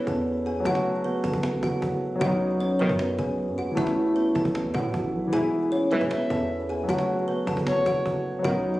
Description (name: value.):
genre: hip hop, trap.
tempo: 154 BPM.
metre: 4/4.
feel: half-time.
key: unclear.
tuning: A4 = 440 Hz.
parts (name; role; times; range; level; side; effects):
kalimba; melody; 0.0-8.8 s; B3 to A5; -27 LUFS; right 1 dB; none.
dark concert grand piano; accompaniment; 0.0-8.8 s; E3 to F#4; -29 LUFS; left 2 dB; none.
hard-hitting 808-style bass; bass; 0.0-8.8 s; E1 to A2; -31 LUFS; equal; none.
cajon; drums; 0.1-8.7 s; none; -35 LUFS; equal; none.
mellow brass ensemble; stabs; 2.2-2.9, 5.3-6.0, 8.4-8.5 s; B1 to E3; -28 LUFS; right 1 dB; none.
breathy flute-like synth lead; second line; 6.1-8.0 s; C#5 to E5; -28 LUFS; left 2 dB; chorus, ping-pong delay.
room: light reverb.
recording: recorded on a phone in the room, studio reverb.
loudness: -23 LUFS.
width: side -17 dB against mid.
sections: 0.0-8.8 A section.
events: none.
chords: 0.0 E; 0.7 F#m; 2.2 Badd9; 3.8 A; 5.3 E; 6.9 F#m.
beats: 0.26 | 0.65 1.04 1.43 1.82 | 2.21 2.60 2.99 3.38 | 3.77 4.16 4.55 4.94 | 5.33 5.72 6.11 6.50 | 6.89 7.28 7.67 8.06 | 8.45.